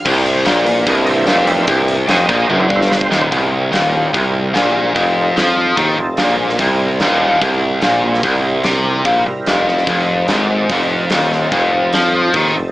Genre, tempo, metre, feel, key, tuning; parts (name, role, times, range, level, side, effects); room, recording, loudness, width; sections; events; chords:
blues rock power trio and southern rock; 146 BPM; 4/4; straight; C mixolydian; A4 = 440 Hz
overdriven tonewheel organ; sustained chords; 0.0-12.7 s; E3 to G5; -22 LUFS; right 1 dB; slow rotary speaker, chorus vibrato
biting overdriven guitar; riff; 0.0-12.7 s; C2 to F3; -14 LUFS; equal
warm tuba; bass; 0.1-12.7 s; Eb1 to F2; -20 LUFS; equal
big rock drum kit; drums; 0.1-12.4 s; crash cymbal, hi-hat, kick drum, snare drum, toms; -22 LUFS; equal
light reverb; small speaker sound; -12 LUFS; side -16 dB against mid
0.0-3.3 A section; 3.3-12.7 B section
drum fill 2.5-3.3
0.1 C7; 5.0 F7; 6.6 C7; 9.9 F7